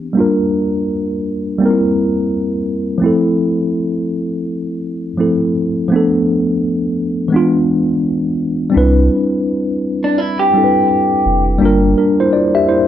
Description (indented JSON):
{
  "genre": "lo-fi hip hop",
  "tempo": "84 BPM",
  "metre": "4/4",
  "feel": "swing 61% on 16ths",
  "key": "C major",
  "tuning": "A4 = 440 Hz",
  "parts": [
    { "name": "mellow tine electric piano", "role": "accompaniment", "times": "0.0-12.9 s", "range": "E3 to E5", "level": "-14 LUFS", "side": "equal", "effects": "medium stereo tremolo, low-pass filter" },
    { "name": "warm sub bass", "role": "bass", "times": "8.8-11.9 s", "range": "F1 to C2", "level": "-14 LUFS", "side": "right 1 dB", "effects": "none" },
    { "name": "electric guitar through a small old amp", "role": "second line", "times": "10.0-11.4 s", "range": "D4 to G4", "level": "-15 LUFS", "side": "equal", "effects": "low-pass filter, analog delay, plate reverb" }
  ],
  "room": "moderate studio reverb, RT60 0.5 s",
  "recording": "none",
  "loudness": "-13 LUFS",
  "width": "side -11 dB against mid",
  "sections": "0.0-8.8 A section; 8.8-12.9 B section",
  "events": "filter sweep on tine electric piano 0.0-8.8",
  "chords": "0.2 Gm7; 1.6 C7; 3.0 Fmaj7; 5.9 Bm7b5; 7.3 E7b9; 8.8 Cmaj9; 11.6 Gm7"
}